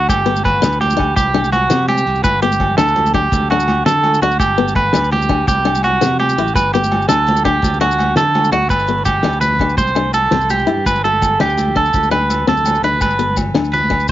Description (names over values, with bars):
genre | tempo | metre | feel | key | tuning
highlife guitar band | 111 BPM (dotted quarters) | 12/8 | straight | G major | A4 = 440 Hz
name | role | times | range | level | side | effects
electric guitar at the edge of break-up | arpeggios | 0.0-14.1 s | F#4 to C5 | -15 LUFS | right 2 dB | cassette tape, tape echo
fingered electric bass | bass | 0.0-14.1 s | G1 to D3 | -21 LUFS | equal | none
cloth-damped thuddy drum kit | drums | 0.1-14.1 s | crash cymbal, hi-hat, kick drum, snare drum | -20 LUFS | equal | cassette tape
agogo bells | percussion | 0.1-14.1 s | none | -27 LUFS | left 4 dB | none
congas | percussion | 0.1-14.1 s | none | -24 LUFS | right 1 dB | none
maracas | percussion | 0.1-14.1 s | none | -29 LUFS | left 8 dB | none
picked steel-string acoustic guitar | accompaniment | 0.3-14.1 s | B3 to E4 | -20 LUFS | left 7 dB | cassette tape
room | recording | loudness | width
light reverb | home recording on cassette, nothing above 7.5 kHz | -12 LUFS | side -13 dB against mid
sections
0.0-8.7 A section; 8.7-14.1 B section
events
none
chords
0.1 G; 1.2 C5; 2.2 G; 3.3 D; 4.4 G; 5.5 C5; 6.5 G; 7.6 D; 8.7 G; 9.8 C5; 10.9 G; 11.9 D5; 13.0 G